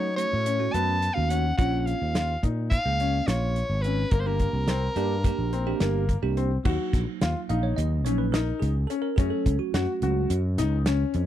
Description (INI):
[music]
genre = progressive instrumental, band music in an uneven meter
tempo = 213 BPM (eighths)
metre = 9/8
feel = straight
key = Eb minor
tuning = A4 = 440 Hz
[part]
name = breathy soprano saxophone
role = melody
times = 0.0-6.4 s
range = Bb4 to A5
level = -29 LUFS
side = equal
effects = none
[part]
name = bell-like tine electric piano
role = accompaniment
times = 0.0-10.4 s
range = Gb3 to F5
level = -32 LUFS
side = right 14 dB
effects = phaser
[part]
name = clear grand piano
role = arpeggios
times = 0.0-11.2 s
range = Bb3 to Gb4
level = -31 LUFS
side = left 8 dB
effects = none
[part]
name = sustaining fretless electric bass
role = bass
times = 0.0-11.3 s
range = G1 to Gb3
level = -26 LUFS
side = equal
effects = none
[part]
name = damped 70s drum kit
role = drums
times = 0.2-11.3 s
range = crash cymbal, hi-hat, kick drum, snare drum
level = -26 LUFS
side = equal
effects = none
[sound]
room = little or no reverb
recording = dry, close 1970s-style studio recording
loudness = -23 LUFS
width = side -11 dB against mid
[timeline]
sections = 0.0-6.7 A section; 6.7-11.3 B section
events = tine electric piano solo 6.7-11.3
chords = 0.0 Gbm; 1.6 Bbm; 4.1 Gm; 6.7 Ebm; 9.2 Gbm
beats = 0.18 0.46 0.74 1.02 1.31 | 1.59 1.87 2.15 2.43 2.71 3.00 3.28 3.56 3.84 | 4.12 4.40 4.68 4.97 5.25 5.53 5.81 6.09 6.37 | 6.65 6.93 7.21 7.50 7.78 8.06 8.34 8.62 8.90 | 9.18 9.46 9.74 10.02 10.30 10.58 10.87 11.15